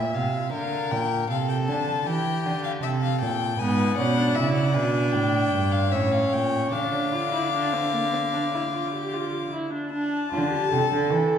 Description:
classical, baroque-style fugue for string quartet; 77 BPM; 4/4; straight; D minor from 3.6 s; A4 = 436 Hz
warm violin; melody; 0.0-11.4 s; E5 to D6; -29 LUFS; left 9 dB
rich violin; second line; 0.0-9.5 s; G4 to F5; -29 LUFS; left 1 dB
warm cello; bass; 0.0-11.4 s; G2 to E3; -26 LUFS; right 2 dB
rich viola; accompaniment; 3.6-11.4 s; Bb3 to A4; -26 LUFS; right 1 dB
wet recital hall reverb, RT60 1.7 s; heard from further back in the room; -22 LUFS; side -8 dB against mid
0.0-9.9 A section; 9.9-11.4 B section
0.0 F5; 0.5 Bb; 2.1 Edim; 3.6 E7/G#; 5.1 Dm/A; 5.9 A7; 6.7 Dm
| 0.53 1.30 2.07 2.83 | 3.60 4.36 5.14 5.93 | 6.73 7.54 8.35 9.15 | 9.94 10.72

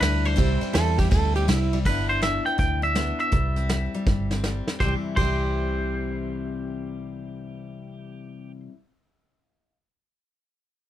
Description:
honky-tonk and classic country; 163 BPM; 4/4; swing 65% on 8ths; C major; A4 = 440 Hz
twangy electric guitar; melody; 0.0-8.6 s; B4 to G5; -28 LUFS; right 1 dB
dark upright piano; accompaniment; 0.0-1.8 s; C4 to C5; -35 LUFS; right 10 dB
picked steel-string acoustic guitar; accompaniment; 0.0-8.7 s; G2 to E4; -30 LUFS; left 4 dB
vintage muted fingered electric bass; bass; 0.0-8.6 s; G1 to E2; -26 LUFS; equal
vintage brush drum kit; drums; 0.0-5.3 s; crash cymbal, hi-hat, kick drum, ride cymbal, snare drum; -25 LUFS; equal
pedal steel guitar; second line; 0.7-1.8, 4.8-8.5 s; E4 to A4; -30 LUFS; right 3 dB
light reverb; close, detailed microphones; -22 LUFS; side -12 dB against mid
0.0-1.9 A section; 1.9-4.8 B section; 4.8-7.7 C section
drum fill 4.1-4.8
0.4 C; 1.9 G6; 3.3 C
0.01 | 0.38 0.75 1.11 1.48 | 1.85 2.22 2.59 2.96 | 3.32 3.69 4.06 4.43 | 4.80 5.17 5.54 5.90 | 6.27 6.64 7.01 7.38

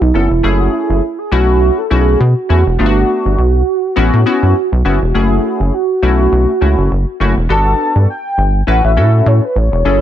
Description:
early-eighties boogie funk; 102 BPM; 4/4; swing 56% on 16ths; A4 = 445 Hz
warm velvety synth lead; melody; 0.0-10.0 s; D#4 to A5; -16 LUFS; right 2 dB; chorus, tremolo, slapback echo
rubbery square bass; bass; 0.0-10.0 s; E1 to B2; -12 LUFS; equal
funky polysynth comp; accompaniment; 0.1-10.0 s; A3 to B4; -17 LUFS; left 4 dB; chorus
little or no reverb; -10 LUFS; side -11 dB against mid
0.0-7.5 A section; 7.5-10.0 B section
0.4 F#m9; 1.3 B9sus4; 2.8 Gmaj9; 4.0 A69; 5.1 F#m9; 6.0 B9sus4; 7.5 Gmaj9; 8.7 A69
| 0.44 1.02 1.61 2.20 | 2.79 3.38 3.97 4.55 | 5.14 5.73 6.32 6.91 | 7.50 8.08 8.67 9.26 | 9.85

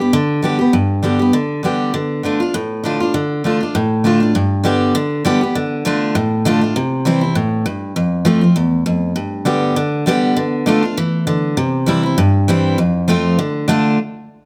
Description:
bluegrass; 199 BPM; 4/4; swing 54% on 8ths; D dorian; A4 = 442 Hz
picked steel-string acoustic guitar; solo; 0.0-14.0 s; E2 to G4; -16 LUFS; equal
moderate large studio reverb, RT60 1.2 s; close, detailed microphones; -16 LUFS; mono
0.0-4.4 A section; 4.4-14.0 B section
0.0 G; 1.9 Dm; 4.4 G; 5.6 Dm; 6.8 C; 8.0 F; 9.2 G; 10.4 Dm; 11.6 C; 12.8 F; 13.4 Dm
0.13 0.43 | 0.73 1.03 1.33 1.64 | 1.94 2.24 2.54 2.84 | 3.15 3.45 3.75 4.05 | 4.35 4.65 4.95 5.25 | 5.56 5.86 6.16 6.46 | 6.76 7.06 7.36 7.66 | 7.96 8.26 8.56 8.87 | 9.17 9.47 9.77 10.07 | 10.37 10.67 10.97 11.28 | 11.58 11.88 12.18 12.48 | 12.78 13.09 13.39 13.69

